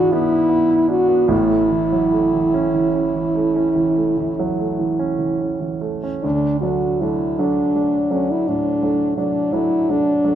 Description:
classical, romantic duo for French horn and grand piano; 47-58 BPM (dotted quarters); 12/8; rubato; D major; A4 = 437 Hz
dark French horn; melody; 0.0-10.3 s; C#4 to F#4; -18 LUFS; left 1 dB
warm grand piano; accompaniment; 0.0-10.3 s; A1 to E4; -21 LUFS; right 4 dB
wet scoring stage reverb, RT60 1.6 s; -16 LUFS; side -10 dB against mid
0.0-6.2 A section; 6.2-10.3 B section
0.0 E7/G#; 1.3 A; 6.2 D
0.14 | 1.31 2.55 3.79 5.00 | 6.24 7.39 8.48 9.53

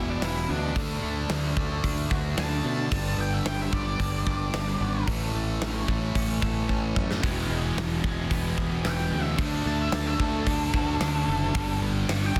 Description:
quiet-loud alternative rock; 111 BPM; 4/4; straight; A4 = 441 Hz
octave-fuzz lead guitar; melody; 0.0-5.0, 8.9-12.4 s; D4 to C#6; -36 LUFS; equal; distortion, plate reverb, analog delay
twelve-string electric guitar; arpeggios; 0.0-12.4 s; E2 to A4; -39 LUFS; equal; phaser
fuzz guitar; riff; 0.0-12.4 s; E2 to D4; -32 LUFS; equal; distortion
growling fingered electric bass; bass; 0.0-12.4 s; E1 to B2; -32 LUFS; equal; overdrive
big rock drum kit; drums; 0.2-12.4 s; hi-hat, kick drum, snare drum; -32 LUFS; equal; soft clipping on kick, soft clipping on snare
scooped high-gain guitar; riff; 7.2-12.4 s; G2 to E4; -38 LUFS; equal; distortion
light reverb; dense, heavily limited modern master; -27 LUFS; mono
0.0-12.4 A section
lead electric guitar solo 0.0-12.4; drum fill 6.7-7.2
0.0 E; 0.8 D; 2.9 G; 5.1 A; 7.2 E; 9.4 D; 11.6 G
0.23 | 0.77 1.30 1.84 2.38 | 2.92 3.46 4.00 4.54 | 5.08 5.61 6.15 6.69 | 7.23 7.77 8.31 8.85 | 9.39 9.93 10.47 11.01 | 11.55 12.09

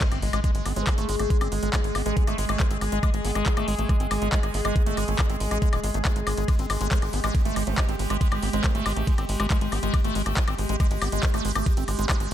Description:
psychedelic trance; 139 BPM; 4/4; straight; Ab major; A4 = 441 Hz
evolving wavetable pad; sustained chords; 0.3-12.3 s; Ab3 to Ab4; -32 LUFS; equal; chorus, built-in reverb, sidechain pumping
liquid acid bass; riff; 0.0-12.3 s; Ab3 to C4; -30 LUFS; moving between left 6 dB and right 7 dB; phaser, auto-pan, sidechain pumping, digital delay
electronic kick drum; drums; 0.0-12.2 s; -23 LUFS; equal
garage drum kit; drums; 0.0-12.3 s; handclaps, hi-hat, ride cymbal, woodblock; -31 LUFS; left 2 dB
impact; sound effects; 0.0-1.3 s; -38 LUFS; right 1 dB
tight sequencer bass; bass; 0.1-12.3 s; Eb1 to A1; -28 LUFS; equal; tube saturation
vowel-sweep wobble bass; second line; 0.8-2.2, 7.7-8.7 s; Ab3 to C4; -41 LUFS; left 3 dB
light reverb, digital ambience; -22 LUFS; side -11 dB against mid
0.0-12.3 A section
impact 0.0-1.3
0.0 Ab5
0.01 0.44 0.87 | 1.30 1.74 2.17 2.60 | 3.03 3.46 3.89 4.33 | 4.76 5.19 5.62 6.05 | 6.48 6.92 7.35 7.78 | 8.21 8.64 9.07 9.50 | 9.94 10.37 10.80 11.23 | 11.66 12.09

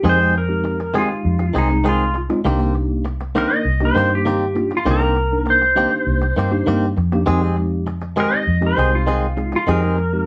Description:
blues; 100 BPM; 4/4; straight; C minor; A4 = 437 Hz
clean lap steel guitar; melody; 0.0-10.3 s; Eb4 to Eb5; -22 LUFS; equal
mellow tine electric piano; accompaniment; 0.0-10.3 s; Ab3 to Bb4; -26 LUFS; equal
direct-recorded clean electric guitar; stabs; 0.0-10.0 s; Eb3 to Ab4; -25 LUFS; equal
vintage muted fingered electric bass; bass; 0.0-10.3 s; C2 to G2; -22 LUFS; equal
moderate studio ambience, RT60 0.5 s; band playing live in one room; -18 LUFS; mono
0.0-10.3 A section
0.0 Fm7; 2.5 Cm7; 7.3 Fm7
| 0.04 0.65 1.25 1.85 | 2.45 3.06 3.66 4.26 | 4.86 5.46 6.06 6.67 | 7.27 7.87 8.47 9.07 | 9.67

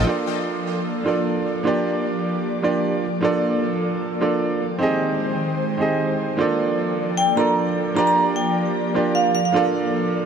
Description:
future bass; 152 BPM; 4/4; swing 53% on 16ths, half-time; Bb major; A4 = 444 Hz
bright grand piano; accompaniment; 0.1-10.3 s; Bb3 to Eb5; -22 LUFS; right 3 dB; ping-pong delay
airy breathy pad; sustained chords; 0.1-10.3 s; Eb3 to G5; -24 LUFS; left 1 dB; chorus
vibraphone with medium hard mallets; melody; 7.2-9.5 s; F5 to Bb5; -23 LUFS; right 2 dB
light reverb, digital ambience; -19 LUFS; side -7 dB against mid
0.1-10.3 A section
0.1 Bbmaj7; 1.6 Gm7; 3.0 Bbmaj7; 4.6 Abmaj7; 6.4 Bbmaj7; 8.0 Gm7; 9.3 Bbmaj7
| 0.07 0.47 0.86 1.25 | 1.65 2.04 2.44 2.83 | 3.23 3.62 4.02 4.41 | 4.81 5.20 5.60 5.99 | 6.39 6.78 7.18 7.57 | 7.96 8.36 8.76 9.15 | 9.54 9.94

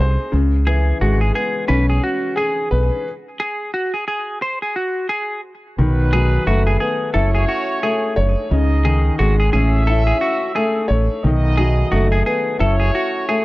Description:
hip hop; 88 BPM; 4/4; swing 59% on 16ths; C# minor; A4 = 442 Hz
warm upright piano; accompaniment; 0.0-13.4 s; C#3 to C#5; -20 LUFS; left 2 dB; cassette tape, high-pass filter, low-pass filter
deep dub fingered electric bass; bass; 0.0-12.9 s; F#1 to C#2; -16 LUFS; equal
semi-hollow electric guitar; melody; 0.7-13.4 s; F#4 to B#4; -22 LUFS; equal; high-pass filter, low-pass filter
warm horn section; stabs; 5.8-13.4 s; F#3 to E5; -25 LUFS; right 1 dB; high-pass filter, low-pass filter
little or no reverb; dry, gritty hardware recording; -16 LUFS; side -19 dB against mid
0.0-5.8 A section; 5.8-13.4 B section
stop 3.1-5.8
0.3 C#m7; 3.1 N.C.; 5.8 B7; 7.1 F#m7; 8.5 C#sus2; 9.5 A; 11.2 B7; 12.6 F#m7
| 0.33 1.01 1.69 2.37 | 3.05 3.73 4.42 5.10 | 5.78 6.46 7.14 7.83 | 8.51 9.19 9.87 10.55 | 11.23 11.92 12.60 13.28

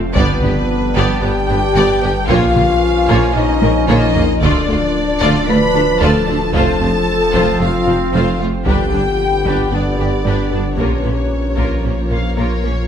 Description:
cinematic, hybrid orchestral and electronic film score; 113 BPM; 4/4; straight; A4 = 440 Hz
bright trombone section; sustained chords; 0.0-12.6 s; D3 to D4; -24 LUFS; right 2 dB
granular cloud pad; sustained chords; 0.0-12.9 s; D3 to B4; -25 LUFS; equal; built-in reverb
resonant blip pluck; arpeggios; 0.0-12.8 s; D3 to Bb4; -28 LUFS; left 2 dB
warm sub bass; bass; 0.0-12.9 s; D1 to Bb1; -22 LUFS; equal
warm symphonic violin section; melody; 0.1-12.9 s; Db4 to F5; -25 LUFS; left 3 dB
rich symphonic violin section; second line; 0.1-12.3 s; B4 to B5; -22 LUFS; left 2 dB
rich symphonic viola section; accompaniment; 0.2-12.7 s; A3 to G4; -23 LUFS; right 1 dB
mellow French horn section; sustained chords; 0.2-12.3 s; B3 to B4; -19 LUFS; left 3 dB
clear symphonic double bass section; bass; 0.2-12.7 s; F1 to D2; -24 LUFS; right 4 dB
mellow tuba; bass; 0.2-12.7 s; F1 to D2; -24 LUFS; right 4 dB
rich symphonic cello section; bass; 0.2-12.7 s; D2 to Bb2; -24 LUFS; right 3 dB
taiko ensemble; drums; 0.2-12.1 s; -22 LUFS; equal
moderate scoring stage reverb, RT60 1.9 s; -13 LUFS; side -8 dB against mid
0.0-12.9 A section
drum fill 3.6-4.4
0.2 G; 2.3 Bbm; 4.4 Dm; 6.5 F; 8.7 G; 10.8 Bbm
| 0.16 0.69 1.23 1.76 | 2.29 2.82 3.35 3.88 | 4.41 4.94 5.47 6.00 | 6.54 7.07 7.60 8.13 | 8.66 9.19 9.72 10.25 | 10.78 11.31 11.85 12.38

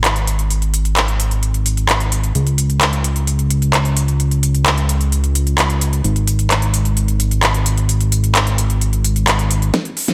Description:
EDM, festival progressive house; 130 BPM; 4/4; straight; A4 = 440 Hz
fat analog bass; bass; 0.0-9.7 s; Ab1 to Db2; -18 LUFS; equal; sidechain pumping
big-room dance drum kit; drums; 0.0-10.1 s; handclaps, hi-hat, snare drum; -20 LUFS; equal; studio reverb
electronic kick drum; drums; 9.7-9.8 s; -23 LUFS; equal; high-pass filter on kick, studio reverb
light reverb; -16 LUFS; mono
0.0-9.7 A section
drum fill 9.7-10.1
0.04 | 0.51 0.97 1.43 1.89 | 2.35 2.81 3.28 3.74 | 4.20 4.66 5.12 5.58 | 6.04 6.51 6.97 7.43 | 7.89 8.35 8.81 9.28 | 9.74

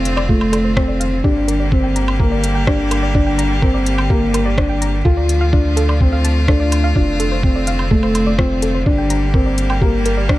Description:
piano and strings electronica; 126 BPM; 4/4; straight; G minor; A4 = 440 Hz
clear string quartet; sustained chords; 0.0-10.4 s; D3 to G4; -23 LUFS; right 1 dB; sidechain pumping
soft round pluck; arpeggios; 0.0-10.3 s; F4 to Bb5; -26 LUFS; equal; chorus, sidechain pumping, tape echo
felt-muted upright piano; riff; 0.0-10.4 s; A3 to F4; -19 LUFS; left 1 dB; tape echo
warm sub bass; bass; 0.0-10.4 s; F1 to D2; -19 LUFS; equal; tube saturation, sidechain pumping
organic electronic drum kit; drums; 0.1-10.4 s; hi-hat, rim click, woodblock; -25 LUFS; equal; overdrive
electronic kick drum; drums; 0.3-10.4 s; -16 LUFS; equal
digital ambience; -13 LUFS; side -16 dB against mid
0.0-10.4 A section
0.0 F6; 1.2 Gm; 5.1 Dm; 7.0 F6; 8.9 Gm
0.29 0.77 | 1.25 1.72 2.20 2.67 | 3.15 3.63 4.10 4.58 | 5.05 5.53 6.01 6.48 | 6.96 7.43 7.91 8.39 | 8.86 9.34 9.82 10.29

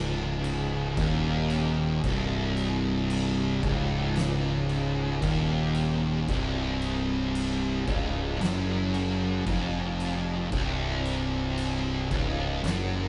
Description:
stoner and doom metal; 57 BPM; 4/4; straight; C phrygian; A4 = 440 Hz
thick fuzz guitar; riff; 0.0-13.1 s; C2 to F#2; -30 LUFS; equal; distortion
fuzz fingered electric bass; bass; 0.0-13.1 s; C1 to F#1; -34 LUFS; equal; overdrive
oversized low-tuned drum kit; drums; 0.4-12.9 s; crash cymbal, kick drum, snare drum; -37 LUFS; equal
moderate stone room reverb, RT60 1.3 s; band playing live in one room, nothing above 11.0 kHz; -28 LUFS; mono
0.0-13.1 A section
0.0 Cm
0.98 | 2.04 3.10 4.16 5.22 | 6.28 7.34 8.40 9.46 | 10.52 11.58 12.64

